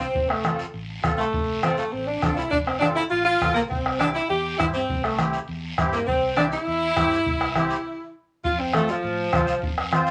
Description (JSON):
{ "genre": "latin, cumbia", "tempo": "202 BPM", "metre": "4/4", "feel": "straight", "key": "F major", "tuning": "A4 = 439 Hz", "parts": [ { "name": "clear saxophone section", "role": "melody", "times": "0.0-9.8 s", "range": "F3 to G4", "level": "-26 LUFS", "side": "equal", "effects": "none" }, { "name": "musette accordion", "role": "accompaniment", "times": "0.0-10.1 s", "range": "C4 to C5", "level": "-31 LUFS", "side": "equal", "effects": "none" }, { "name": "fingered electric bass", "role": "bass", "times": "0.0-10.1 s", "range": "F1 to A2", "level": "-37 LUFS", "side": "equal", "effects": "none" }, { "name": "bombo", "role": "percussion", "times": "0.1-10.1 s", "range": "none", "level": "-29 LUFS", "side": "equal", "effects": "none" }, { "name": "guiro", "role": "percussion", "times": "0.1-10.1 s", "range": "none", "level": "-41 LUFS", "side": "equal", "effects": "none" }, { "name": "congas", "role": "percussion", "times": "0.2-10.1 s", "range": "none", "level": "-32 LUFS", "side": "equal", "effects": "none" } ], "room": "wet club reverb, RT60 0.6 s", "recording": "none", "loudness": "-24 LUFS", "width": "mono", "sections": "0.0-8.4 A section; 8.4-10.1 B section", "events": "stop 7.9-8.4; saxophone section solo 8.4-10.1", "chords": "0.0 F; 3.7 C; 8.4 F", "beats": "| 0.15 0.45 0.74 1.04 | 1.34 1.63 1.93 2.23 | 2.52 2.82 3.12 3.41 | 3.71 4.01 4.30 4.60 | 4.89 5.19 5.49 5.78 | 6.08 6.38 6.67 6.97 | 7.26 7.56 7.86 8.15 | 8.45 8.74 9.04 9.33 | 9.63 9.93" }